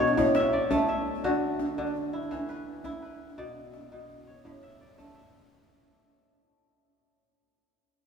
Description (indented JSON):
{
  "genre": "west african traditional, West African string and xylophone music",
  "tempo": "112 BPM (dotted quarters)",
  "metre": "12/8",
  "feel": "straight",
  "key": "unclear",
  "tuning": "A4 = 440 Hz",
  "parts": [
    { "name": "kora", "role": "arpeggios", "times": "0.0-7.0 s", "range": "A2 to E5", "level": "-27 LUFS", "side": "left 1 dB", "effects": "none" },
    { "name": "djembe", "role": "percussion", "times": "0.1-5.5 s", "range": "none", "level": "-33 LUFS", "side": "equal", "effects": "none" }
  ],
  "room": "wet cathedral reverb, RT60 5.0 s",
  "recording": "recorded in a church or concert hall",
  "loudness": "-25 LUFS",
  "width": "side -6 dB against mid",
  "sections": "0.0-5.5 A section",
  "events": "fade-out 0.0-5.5",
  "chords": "0.2 A; 1.2 D; 2.3 E5; 3.4 Bm; 4.4 A"
}